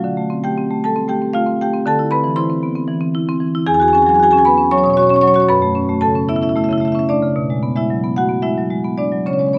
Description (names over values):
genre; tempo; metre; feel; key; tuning
classical, contemporary piece for solo marimba; 229 BPM (eighths); 7/8; rubato; unclear; A4 = 439 Hz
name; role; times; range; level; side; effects
marimba with medium hard mallets; solo; 0.0-9.6 s; E2 to C#6; -16 LUFS; equal; none
room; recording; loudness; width
moderate recital hall reverb, RT60 1.8 s; none; -16 LUFS; mono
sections
0.0-9.6 A section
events
none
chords
0.0 Dm7; 1.9 C69/D; 3.7 E69; 5.5 F#m7; 7.3 Bm6